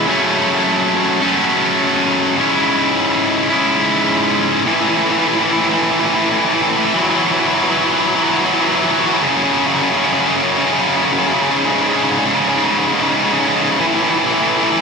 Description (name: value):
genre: rock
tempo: 53 BPM (dotted quarters)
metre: 6/8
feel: straight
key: A major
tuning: A4 = 440 Hz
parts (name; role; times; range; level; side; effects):
- tight distorted guitar; solo; 0.0-14.8 s; F#2 to E4; -13 LUFS; equal; distortion, slapback echo
room: wet lush hall reverb, RT60 2.2 s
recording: big arena sound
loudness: -13 LUFS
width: side -4 dB against mid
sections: 0.0-4.6 A section; 4.6-14.8 B section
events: build-up 4.6-14.8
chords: 0.1 F#m; 2.4 C#m/G#; 4.6 A5; 6.9 Esus2; 9.2 F#5; 11.5 C#5/G#; 13.8 A5